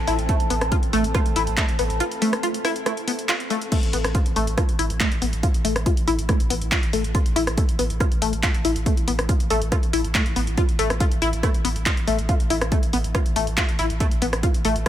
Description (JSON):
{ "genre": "driving peak-time techno", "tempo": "140 BPM", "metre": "4/4", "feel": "straight", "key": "A minor", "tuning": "A4 = 440 Hz", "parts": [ { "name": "saturated sub bass", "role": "bass", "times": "0.0-14.9 s", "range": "A1", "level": "-27 LUFS", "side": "equal", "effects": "overdrive, sidechain pumping, low-pass filter" }, { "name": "deep dark ambient pad", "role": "texture", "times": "0.0-3.7 s", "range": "C4 to A5", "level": "-31 LUFS", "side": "left 1 dB", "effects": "chorus, built-in reverb, sidechain pumping" }, { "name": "tight sequenced synth", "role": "riff", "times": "0.1-14.9 s", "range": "A3 to F4", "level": "-25 LUFS", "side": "left 2 dB", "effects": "chorus, phaser, tube saturation, sidechain pumping, digital delay" }, { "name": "punchy analog drum machine", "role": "drums", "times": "0.1-14.9 s", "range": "crash cymbal, handclaps, hi-hat, rim click", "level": "-27 LUFS", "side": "equal", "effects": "sidechain pumping on hats, sidechain pumping on cymbals" }, { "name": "electronic kick drum", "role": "drums", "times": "0.3-14.9 s", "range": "none", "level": "-22 LUFS", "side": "equal", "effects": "none" } ], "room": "light reverb, digital ambience", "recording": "none", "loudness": "-19 LUFS", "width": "side -11 dB against mid", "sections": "0.0-3.7 A section; 3.7-14.9 A section", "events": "drop 0.0-3.7, 3.7-14.9; break 2.0-3.7", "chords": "0.0 Am", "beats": "| 0.29 0.72 1.15 1.58 | 2.00 2.43 2.86 3.29 | 3.72 4.15 4.58 5.00 | 5.43 5.86 6.29 6.72 | 7.15 7.58 8.01 8.43 | 8.86 9.29 9.72 10.15 | 10.58 11.01 11.43 11.86 | 12.29 12.72 13.15 13.58 | 14.01 14.43 14.86" }